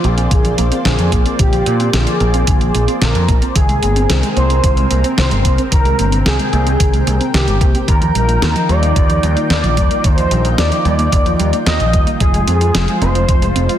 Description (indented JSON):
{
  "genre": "synthwave",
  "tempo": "111 BPM",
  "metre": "4/4",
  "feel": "straight",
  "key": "unclear",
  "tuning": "A4 = 440 Hz",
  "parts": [
    { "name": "expressive synth lead", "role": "melody", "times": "0.0-13.7 s", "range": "G4 to Eb5", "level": "-19 LUFS", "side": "equal", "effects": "ensemble chorus, vintage 12-bit sampler grit, digital delay" },
    { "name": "lush unison pad", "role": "sustained chords", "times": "0.0-13.8 s", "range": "C3 to G5", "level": "-22 LUFS", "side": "left 1 dB", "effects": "chorus, phaser, sidechain pumping" },
    { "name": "warbly dusty pluck", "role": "arpeggios", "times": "0.0-13.8 s", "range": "D3 to F4", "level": "-22 LUFS", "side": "right 3 dB", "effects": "chorus, digital delay" },
    { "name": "overdriven picked electric bass", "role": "bass", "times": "0.0-13.7 s", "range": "F1 to Bb2", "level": "-16 LUFS", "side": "equal", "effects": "sidechain pumping" },
    { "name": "clean 12-bit digital drum machine", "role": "drums", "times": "0.0-13.8 s", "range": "hi-hat, snare drum", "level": "-21 LUFS", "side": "equal", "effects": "none" },
    { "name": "electronic kick drum", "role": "drums", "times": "0.3-13.4 s", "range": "none", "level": "-14 LUFS", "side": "equal", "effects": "none" }
  ],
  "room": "light reverb",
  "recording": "dense, heavily limited modern master",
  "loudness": "-12 LUFS",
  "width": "side -11 dB against mid",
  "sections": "0.0-13.8 A section",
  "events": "none",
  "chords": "0.0 Bbadd9; 3.6 Abadd9; 7.9 Ebadd9; 12.2 Fm"
}